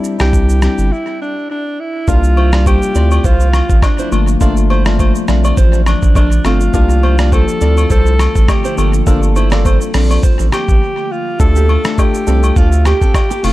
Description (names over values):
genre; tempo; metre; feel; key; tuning
afrobeats; 103 BPM; 4/4; swing 55% on 16ths; unclear; A4 = 440 Hz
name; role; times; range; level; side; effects
tine electric piano; accompaniment; 0.0-13.5 s; G3 to A4; -20 LUFS; left 4 dB; overdrive, tape echo
lo-fi sampler-style drum kit; drums; 0.0-13.5 s; hi-hat, kick drum, rim click, shaker; -14 LUFS; equal; none
breathy alto saxophone; melody; 0.2-13.5 s; D4 to A4; -20 LUFS; equal; tape echo
saturated sub bass; bass; 0.2-13.5 s; F1 to D2; -12 LUFS; equal; none
glassy FM pad; sustained chords; 2.8-11.4 s; C3 to F4; -25 LUFS; left 2 dB; ensemble chorus, built-in reverb
nylon-string guitar; riff; 2.1-13.5 s; A3 to D5; -23 LUFS; right 5 dB; tape echo
agogo bells and woodblock; percussion; 2.4-13.5 s; none; -25 LUFS; left 4 dB; tape echo
room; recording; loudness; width
little or no reverb; echo-heavy mix; -10 LUFS; side -16 dB against mid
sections
0.0-2.1 A section; 2.1-11.4 B section; 11.4-13.5 C section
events
break 0.9-2.1, 10.8-11.4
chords
0.0 Cadd9; 2.1 C7sus4; 3.0 Dm7; 4.1 Gm7; 5.3 Bbmaj7; 6.7 C7sus4; 7.6 Dm7; 8.8 Gm7; 9.9 Bbmaj7; 11.4 Dm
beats
0.33 0.91 1.50 | 2.08 2.66 3.24 3.83 | 4.41 4.99 5.57 6.16 | 6.74 7.32 7.90 8.49 | 9.07 9.65 10.23 10.82 | 11.40 11.98 12.56 13.15